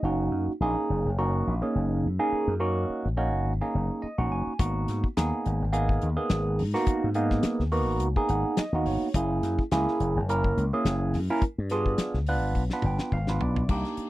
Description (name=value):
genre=electric jazz fusion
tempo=106 BPM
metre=4/4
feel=swing 55% on 16ths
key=G# minor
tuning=A4 = 440 Hz
part: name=barky tine electric piano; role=accompaniment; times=0.0-14.1 s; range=A#3 to G#5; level=-27 LUFS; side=right 2 dB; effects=phaser
part: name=slap bass with an envelope filter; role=bass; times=0.0-14.0 s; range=F#1 to G#2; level=-27 LUFS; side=left 1 dB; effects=none
part: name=damped 70s drum kit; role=drums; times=4.6-14.1 s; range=crash cymbal, hi-hat, kick drum, snare drum, toms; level=-30 LUFS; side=left 1 dB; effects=none
room=light reverb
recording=dry, close 1970s-style studio recording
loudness=-24 LUFS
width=side -16 dB against mid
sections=0.0-13.7 A section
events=tine electric piano fill 3.7-4.6, 8.0-9.2, 12.6-13.7; drum fill 12.6-13.7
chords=0.0 D#m7/F#; 4.6 G#m7; 9.2 F#9; 11.4 G7b9